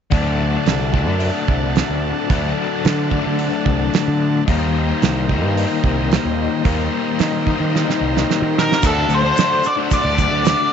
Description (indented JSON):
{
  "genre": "psychedelic rock",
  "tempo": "110 BPM",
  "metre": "4/4",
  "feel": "straight",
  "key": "D phrygian dominant",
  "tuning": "A4 = 440 Hz",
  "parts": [
    { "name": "combo organ", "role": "sustained chords", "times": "0.1-10.7 s", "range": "D4 to Bb5", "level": "-26 LUFS", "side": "right 12 dB", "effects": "none" },
    { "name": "overdriven electric guitar", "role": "riff", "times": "0.1-10.7 s", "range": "D3 to Eb4", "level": "-21 LUFS", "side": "left 11 dB", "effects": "rotary speaker" },
    { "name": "growling fingered electric bass", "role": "bass", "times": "0.1-10.5 s", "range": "C2 to Eb3", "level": "-21 LUFS", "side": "right 1 dB", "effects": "overdrive" },
    { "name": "cloth-damped thuddy drum kit", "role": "drums", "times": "0.1-10.6 s", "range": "crash cymbal, hi-hat, kick drum, snare drum", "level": "-20 LUFS", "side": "right 5 dB", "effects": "none" },
    { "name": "octave-fuzz lead guitar", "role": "melody", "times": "8.6-10.7 s", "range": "A4 to D5", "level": "-17 LUFS", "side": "left 1 dB", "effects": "wah, distortion, tape echo" },
    { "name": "egg shaker", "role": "percussion", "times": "8.8-10.6 s", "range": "none", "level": "-34 LUFS", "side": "left 15 dB", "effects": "none" }
  ],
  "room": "light reverb, studio ambience",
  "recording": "1960s-style stereo with parts hard left and right, nothing above 7.9 kHz",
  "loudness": "-15 LUFS",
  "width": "side -8 dB against mid",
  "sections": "0.1-8.8 A section; 8.8-10.7 B section",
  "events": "drum fill 7.7-8.8",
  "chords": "0.1 D; 4.5 Eb6; 8.8 D",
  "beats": "| 0.12 0.66 1.20 1.75 | 2.29 2.84 3.38 3.93 | 4.47 5.01 5.56 6.10 | 6.65 7.19 7.74 8.28 | 8.82 9.37 9.91 10.46"
}